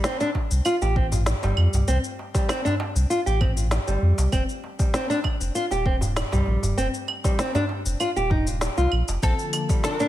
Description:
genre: organic downtempo.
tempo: 98 BPM.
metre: 4/4.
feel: straight.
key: C dorian.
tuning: A4 = 439 Hz.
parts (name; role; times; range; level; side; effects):
nylon-string guitar; arpeggios; 0.0-10.1 s; G3 to G4; -26 LUFS; equal; ping-pong delay.
organic electronic drum kit; drums; 0.0-10.1 s; claves, hi-hat, shaker, snare drum; -30 LUFS; equal; none.
darbuka; percussion; 0.2-10.1 s; none; -30 LUFS; right 1 dB; none.
electronic kick drum; drums; 0.3-9.8 s; none; -24 LUFS; equal; none.
warm sub bass; bass; 0.5-9.3 s; Eb1 to F2; -22 LUFS; equal; none.
oud; melody; 9.2-10.1 s; A4 to Bb4; -27 LUFS; left 2 dB; ping-pong delay.
warm analog pad; sustained chords; 9.2-10.1 s; D3 to F4; -31 LUFS; left 2 dB; chorus, sidechain pumping.
room: light reverb, digital ambience.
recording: none.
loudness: -21 LUFS.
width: side -13 dB against mid.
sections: 0.0-10.1 A section.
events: none.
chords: 0.0 C5; 4.3 F7sus2; 9.2 Bbmaj7.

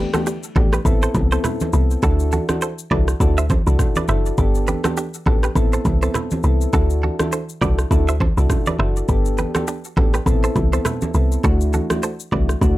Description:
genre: afrobeats.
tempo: 102 BPM.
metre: 4/4.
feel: swing 58% on 16ths.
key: unclear.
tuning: A4 = 439 Hz.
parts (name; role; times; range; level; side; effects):
soft electric-piano-like synth keys; accompaniment; 0.0-12.8 s; A3 to A4; -24 LUFS; left 1 dB; chorus.
direct-recorded clean electric guitar; riff; 0.0-12.4 s; D4 to E5; -26 LUFS; right 4 dB; tape echo.
woody log drum bass; bass; 0.0-12.8 s; F#1 to D2; -18 LUFS; equal; none.
afro-pop drum kit; drums; 0.1-12.8 s; kick drum, rim click, shaker; -21 LUFS; equal; none.
congas; percussion; 0.1-12.8 s; none; -26 LUFS; right 2 dB; none.
room: little or no reverb.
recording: dark, warm production.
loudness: -16 LUFS.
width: side -16 dB against mid.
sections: 0.0-12.8 A section.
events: none.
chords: 0.0 Gadd9; 0.9 Amadd9; 2.0 Dadd9; 4.4 Gadd9; 5.6 Amadd9; 6.7 Dadd9; 9.1 Gadd9; 10.3 Amadd9; 11.4 Dadd9.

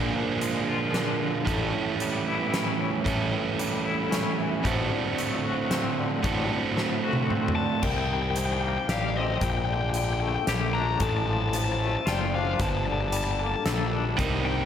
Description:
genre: post-rock.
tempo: 113 BPM.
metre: 3/4.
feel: straight.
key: G minor.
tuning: A4 = 439 Hz.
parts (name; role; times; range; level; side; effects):
twangy electric guitar; arpeggios; 0.0-14.7 s; G2 to A4; -32 LUFS; left 5 dB; tremolo, slapback echo.
vibraphone with soft mallets; arpeggios; 0.0-14.7 s; A4 to F5; -36 LUFS; left 2 dB; slapback echo.
overdriven electric guitar; riff; 0.0-7.8, 14.2-14.7 s; A2 to A4; -27 LUFS; right 5 dB; slapback echo.
fuzz picked electric bass; bass; 0.0-14.7 s; F#1 to C2; -29 LUFS; left 1 dB; overdrive.
huge arena drum kit; drums; 0.4-14.3 s; crash cymbal, hi-hat, kick drum, snare drum, toms; -31 LUFS; equal; none.
smooth overdriven lead guitar; melody; 7.6-14.7 s; Eb5 to Bb5; -30 LUFS; left 5 dB; slapback echo.
room: moderate lush hall reverb, RT60 2.1 s.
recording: big arena sound.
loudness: -24 LUFS.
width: side -9 dB against mid.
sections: 0.0-7.8 A section; 7.8-14.7 B section.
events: drum fill 6.8-7.8.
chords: 0.0 Bb7; 1.5 A7; 4.6 D7/A; 7.8 Cm7; 9.4 Gmadd9/Bb; 11.0 Dm/A; 12.6 Gmadd9.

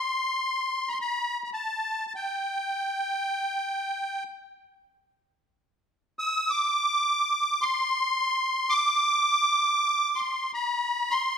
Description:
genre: Arabic maqam ensemble.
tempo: free time.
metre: none.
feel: none.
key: C maqam rast.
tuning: A4 = 440 Hz.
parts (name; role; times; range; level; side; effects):
musette accordion; solo; 0.0-11.4 s; G5 to E6-50c; -24 LUFS; equal; none.
room: moderate recital hall reverb, RT60 1.5 s.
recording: minimal, uncompressed stereo recording.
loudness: -24 LUFS.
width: side -7 dB against mid.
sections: 0.0-11.4 A section.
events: none.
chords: none.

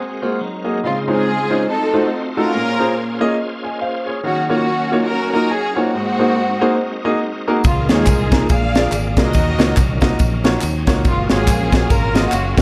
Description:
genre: uptempo gospel.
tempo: 141 BPM.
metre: 4/4.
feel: swing 59% on 8ths.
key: Db major.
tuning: A4 = 440 Hz.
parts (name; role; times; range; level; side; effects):
clean electric guitar; second line; 0.0-0.8 s; Gb3 to Ab4; -30 LUFS; equal; warbly pitch drift.
bright tonewheel organ; sustained chords; 0.0-12.6 s; Db3 to Ab5; -30 LUFS; equal; slow rotary speaker, chorus vibrato.
clear grand piano; accompaniment; 0.2-12.6 s; Ab2 to Ab5; -22 LUFS; equal; none.
warm studio string section; melody; 0.8-12.6 s; Ab3 to F5; -22 LUFS; equal; none.
fingered electric bass; bass; 7.6-12.6 s; Gb1 to Eb2; -23 LUFS; equal; none.
crisp fusion drum kit; drums; 7.6-12.6 s; kick drum, ride cymbal, snare drum; -19 LUFS; equal; none.
tambourine and handclaps; percussion; 7.6-12.6 s; none; -34 LUFS; equal; none.
room: light reverb, studio reverb.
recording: none.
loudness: -17 LUFS.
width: mono.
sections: 0.8-12.6 A section.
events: break 0.0-0.8.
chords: 0.0 Ab9; 0.8 Dbmaj9; 1.7 F7b9; 2.5 Bbm9; 4.2 Ebm9; 5.9 Ab9; 7.6 Db69; 8.5 Bb7; 9.3 Ebm9; 11.0 Gbmaj9.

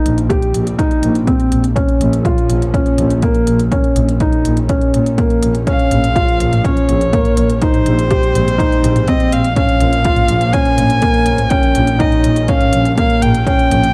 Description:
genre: piano and strings electronica.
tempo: 123 BPM.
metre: 4/4.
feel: straight.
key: Bb dorian.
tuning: A4 = 439 Hz.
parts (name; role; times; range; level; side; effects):
dark studio string section; sustained chords; 0.0-13.9 s; Eb3 to Db4; -30 LUFS; equal; none.
felt-muted upright piano; riff; 0.0-13.8 s; Bb3 to G4; -19 LUFS; equal; digital delay.
warm chamber double bass section; bass; 0.1-13.9 s; Bb1 to Bb2; -19 LUFS; equal; sidechain pumping.
organic electronic drum kit; drums; 0.1-13.9 s; hi-hat, toms; -26 LUFS; equal; none.
electronic kick drum; drums; 0.3-13.6 s; none; -20 LUFS; equal; overdrive.
dark violin; melody; 5.7-13.9 s; C5 to Ab5; -20 LUFS; equal; none.
room: light reverb, small room ambience.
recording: none.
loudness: -14 LUFS.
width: mono.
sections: 0.0-13.9 A section.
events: none.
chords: 0.0 Abmaj7/Bb; 1.8 Bbm; 3.7 Eb7/Bb; 5.7 Bbm; 7.6 Abmaj7/Bb; 9.6 Bbm; 11.5 Eb7/Bb.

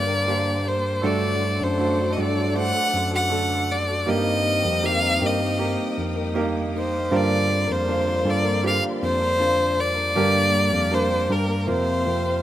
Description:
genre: pop ballad.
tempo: 79 BPM.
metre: 4/4.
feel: straight.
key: unclear.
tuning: A4 = 437 Hz.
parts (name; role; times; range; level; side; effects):
clear violin; melody; 0.0-12.4 s; Bb4 to F#5; -23 LUFS; left 1 dB; none.
mellow French horn section; second line; 0.0-12.4 s; F2 to D4; -31 LUFS; left 5 dB; none.
clear grand piano; accompaniment; 0.0-12.4 s; G2 to C5; -27 LUFS; right 5 dB; none.
clear studio string section; sustained chords; 0.0-12.4 s; Bb3 to Eb6; -35 LUFS; left 1 dB; none.
nylon-string guitar; arpeggios; 0.0-12.4 s; G2 to Bb4; -33 LUFS; left 6 dB; none.
tine electric piano; bass; 0.0-12.4 s; F2 to G2; -26 LUFS; equal; none.
room: small room ambience.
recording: rough home demo mix.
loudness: -20 LUFS.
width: side -12 dB against mid.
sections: 0.0-12.4 A section.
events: none.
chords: 0.0 Bbadd9; 1.0 D; 4.1 Eb; 7.1 Bbadd9; 10.2 Gm; 11.7 Fsus4.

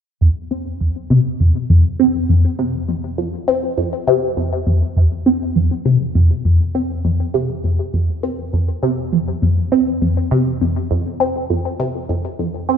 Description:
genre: ambient.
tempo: 101 BPM.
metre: 4/4.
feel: straight.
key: unclear.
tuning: A4 = 440 Hz.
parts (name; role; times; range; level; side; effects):
resonant blip pluck; solo; 0.2-12.8 s; F2 to C4; -15 LUFS; equal; phaser, wide subtle chorus, ping-pong delay.
room: moderate concert hall reverb, RT60 2.3 s.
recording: none.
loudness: -15 LUFS.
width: side -8 dB against mid.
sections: 0.2-5.0 A section; 5.0-12.8 B section.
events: none.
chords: none.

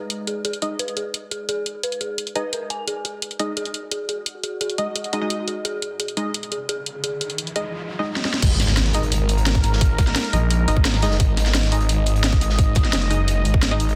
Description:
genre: dark technical drum and bass.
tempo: 173 BPM.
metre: 4/4.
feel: straight.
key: unclear.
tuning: A4 = 440 Hz.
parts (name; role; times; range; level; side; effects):
sweeping resonant pad; sustained chords; 0.0-14.0 s; G#3 to A#5; -33 LUFS; equal; chorus, sidechain pumping.
filtered dub chord stab; stabs; 0.0-13.8 s; G#3 to D#5; -31 LUFS; equal; subtle chorus, tape echo.
drum and bass drum kit; drums; 0.1-13.9 s; crash cymbal, hi-hat, snare drum; -27 LUFS; equal; none.
dark detuned synth bell; arpeggios; 0.3-7.6 s; G#4 to G#5; -31 LUFS; equal; chorus, sidechain pumping, low-pass filter, tape echo.
riser and impact; sound effects; 6.9-9.8 s; none; -33 LUFS; equal; none.
snarling distorted saw bass; bass; 8.4-14.0 s; F#1 to G#1; -22 LUFS; equal; overdrive, sidechain pumping.
crunchy breakbeat drum kit; drums; 8.4-14.0 s; hi-hat, snare drum; -34 LUFS; equal; high-pass filter on hats, high-pass filter on snare, high-pass filter on room.
electronic kick drum; drums; 8.4-13.6 s; none; -20 LUFS; equal; none.
growling FM bass; bass; 10.3-10.7 s; A#1; -20 LUFS; equal; none.
room: light reverb.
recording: dense, heavily limited modern master.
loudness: -22 LUFS.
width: mono.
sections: 0.0-8.4 A section; 8.4-14.0 B section.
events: riser 6.9-8.4; drum fill 8.2; drop 8.4-14.0; impact 8.4-9.8.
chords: 0.0 G#5.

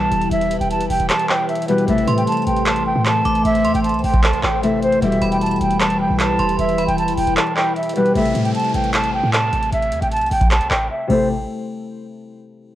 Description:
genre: hip hop, trap.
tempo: 153 BPM.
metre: 4/4.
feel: half-time.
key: A minor.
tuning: A4 = 440 Hz.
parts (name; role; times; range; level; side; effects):
breathy mellow silver concert flute; melody; 0.0-11.3 s; B4 to A5; -20 LUFS; right 1 dB; low-pass filter.
Celtic harp; accompaniment; 0.0-11.3 s; B2 to A4; -22 LUFS; left 3 dB; low-pass filter.
ethereal airy pad; sustained chords; 0.0-8.1 s; E3 to E5; -25 LUFS; equal; ensemble chorus, built-in reverb, phaser.
short 808-style bass; bass; 0.0-11.5 s; E1 to A2; -24 LUFS; right 1 dB; transformer saturation.
booming analog drum machine; drums; 0.1-11.2 s; crash cymbal, handclaps, hi-hat, kick drum; -21 LUFS; right 1 dB; none.
metallic FM bell; second line; 2.1-8.1 s; B5 to D6; -27 LUFS; right 2 dB; chorus, analog delay.
downlifter; sound effects; 8.2-11.3 s; none; -36 LUFS; right 1 dB; none.
room: wet spring reverb, RT60 1.2 s, digital ambience.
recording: worn, warbling old tape, cassette tape, warbly pitch drift.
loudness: -15 LUFS.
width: side -13 dB against mid.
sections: 0.0-8.2 A section; 8.2-11.3 B section; 11.3-12.8 C section.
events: kick muted 1.1-1.9, 7.4-8.2; drums muted 10.9-11.3.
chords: 0.0 Em; 1.9 Am; 5.0 Em; 8.2 Am; 11.3 N.C..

